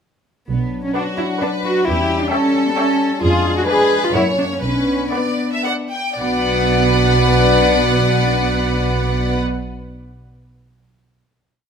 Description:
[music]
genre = cinematic, playful, whimsical film cue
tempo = 112-133 BPM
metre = 3/4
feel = straight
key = B minor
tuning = A4 = 441 Hz
[part]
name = dark French horn section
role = sustained chords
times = 0.5-9.4 s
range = F#3 to F#4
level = -23 LUFS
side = left 3 dB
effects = none
[part]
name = warm studio cello section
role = bass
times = 0.5-9.4 s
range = B3 to Ab4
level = -20 LUFS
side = right 1 dB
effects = none
[part]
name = warm studio double bass section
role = bass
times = 0.5-9.4 s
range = B1 to F#2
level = -20 LUFS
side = right 3 dB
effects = none
[part]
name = warm studio violin section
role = melody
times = 1.0-9.4 s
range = F#5 to Ab5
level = -24 LUFS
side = left 2 dB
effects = none
[part]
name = clear studio violin section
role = second line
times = 1.0-9.4 s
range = F#4 to G5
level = -21 LUFS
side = left 2 dB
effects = none
[part]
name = warm studio viola section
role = accompaniment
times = 1.0-9.4 s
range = A#4 to E5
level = -23 LUFS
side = left 1 dB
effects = none
[sound]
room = moderate recital hall reverb, RT60 1.7 s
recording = none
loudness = -15 LUFS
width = side -7 dB against mid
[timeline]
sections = 0.5-6.2 A section; 6.2-9.4 final chord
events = slowing down 2.5-6.2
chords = 0.5 Bm; 1.9 C#dim/E; 3.2 Fdim7; 4.2 F#7; 4.6 Bm

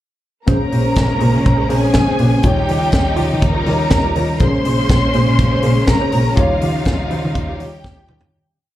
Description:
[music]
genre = disco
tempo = 122 BPM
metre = 4/4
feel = straight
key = Bb dorian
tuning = A4 = 441 Hz
[part]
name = warm studio string section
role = second line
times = 0.5-8.3 s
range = F4 to C6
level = -22 LUFS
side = equal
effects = slapback echo
[part]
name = mellow electric guitar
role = accompaniment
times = 0.5-8.3 s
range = Db4 to Db5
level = -25 LUFS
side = right 4 dB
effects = wide subtle chorus
[part]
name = tine electric piano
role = accompaniment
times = 0.5-8.4 s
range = G3 to Db5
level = -22 LUFS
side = left 3 dB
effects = auto-pan, slapback echo
[part]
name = clear studio string section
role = sustained chords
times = 0.5-8.3 s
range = Db3 to Eb4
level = -23 LUFS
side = right 1 dB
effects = none
[part]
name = clear double bass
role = bass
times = 0.5-8.3 s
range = Bb1 to Eb3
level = -17 LUFS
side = equal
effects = none
[part]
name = tight funk drum kit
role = drums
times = 0.5-8.3 s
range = hi-hat, kick drum, snare drum, toms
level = -18 LUFS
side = equal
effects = none
[sound]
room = light reverb, small room ambience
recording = live gig heard through the venue's PA, club reverb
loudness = -13 LUFS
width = side -13 dB against mid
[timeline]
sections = 0.5-8.3 groove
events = fade-out 6.4-8.3; drum fill 7.8-8.3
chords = 0.5 Bbm9; 2.4 Eb9; 4.4 Bbm9; 6.4 Eb9

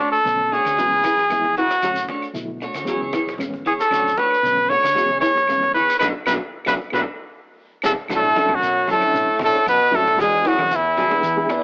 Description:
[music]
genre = afrobeat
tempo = 115 BPM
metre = 4/4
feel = straight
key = B dorian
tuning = A4 = 435 Hz
[part]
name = clear trumpet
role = melody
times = 0.0-11.6 s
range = E4 to C#5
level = -17 LUFS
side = equal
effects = cassette tape, plate reverb
[part]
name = clean electric guitar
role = stabs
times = 0.0-11.6 s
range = F#3 to C#5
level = -28 LUFS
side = right 1 dB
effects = lush chorus, cassette tape, plate reverb
[part]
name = cajon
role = drums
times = 0.0-11.6 s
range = none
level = -38 LUFS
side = equal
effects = none
[part]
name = claves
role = percussion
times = 0.1-11.6 s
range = none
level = -33 LUFS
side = right 1 dB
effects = none
[part]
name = shekere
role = percussion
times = 0.1-11.6 s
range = none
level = -36 LUFS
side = left 1 dB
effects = none
[part]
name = mellow reed electric piano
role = accompaniment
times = 0.2-11.6 s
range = D3 to D5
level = -29 LUFS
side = left 1 dB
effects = tremolo, cassette tape, plate reverb
[part]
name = hollow-body short-scale fingered electric bass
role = bass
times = 0.3-11.4 s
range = G#1 to E3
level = -37 LUFS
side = equal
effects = none
[part]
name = congas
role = percussion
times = 0.3-11.6 s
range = none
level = -33 LUFS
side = equal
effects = none
[part]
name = electric guitar through a small old amp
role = arpeggios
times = 0.5-11.2 s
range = B2 to A3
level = -27 LUFS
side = left 1 dB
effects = spring reverb, cassette tape, plate reverb
[part]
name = warm trombone section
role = second line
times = 8.1-11.6 s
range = E2 to B2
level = -28 LUFS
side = equal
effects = cassette tape, plate reverb
[part]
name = breathy tenor saxophone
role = second line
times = 8.2-11.6 s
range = E3 to B3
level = -26 LUFS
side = equal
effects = cassette tape, plate reverb
[sound]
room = moderate booth ambience, RT60 0.2 s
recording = home recording on cassette, AM radio sound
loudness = -16 LUFS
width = side -30 dB against mid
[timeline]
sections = 0.0-8.1 A section; 8.1-11.6 B section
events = band accent 6.0-8.1; reed electric piano fill 6.5-8.1, 11.2-11.6; drum fill 7.1-8.1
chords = 0.0 Bm9; 0.8 E69; 1.8 Bm9; 2.9 Amaj13 (rootless); 3.9 Bm9; 5.0 E69; 6.0 Bm7; 7.1 Amaj9; 8.1 Bm9; 10.2 E7

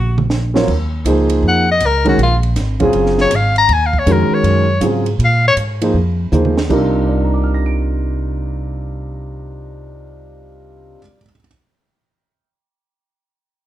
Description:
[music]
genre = modal jazz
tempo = 159 BPM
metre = 4/4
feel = swing 65% on 8ths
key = unclear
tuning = A4 = 440 Hz
[part]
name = clear soprano saxophone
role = melody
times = 0.0-5.5 s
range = F4 to Bb5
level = -15 LUFS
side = left 3 dB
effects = plate reverb
[part]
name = upright bass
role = bass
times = 0.0-10.9 s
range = Gb1 to Bb2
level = -17 LUFS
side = equal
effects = none
[part]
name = compact cocktail drum kit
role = drums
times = 0.2-6.8 s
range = crash cymbal, hi-hat, kick drum, ride cymbal, snare drum, toms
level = -24 LUFS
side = right 3 dB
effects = none
[part]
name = warm concert grand piano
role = accompaniment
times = 0.5-11.5 s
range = C3 to D7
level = -17 LUFS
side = right 1 dB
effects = none
[sound]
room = light reverb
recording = none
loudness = -13 LUFS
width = side -13 dB against mid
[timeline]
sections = 0.7-6.7 A section; 6.7-9.7 B section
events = drum fill 0.0-0.7, 6.3-6.7; soprano saxophone solo 0.7-6.7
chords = 0.0 Ebm9 (rootless); 0.7 Ebm11; 6.7 Cm11

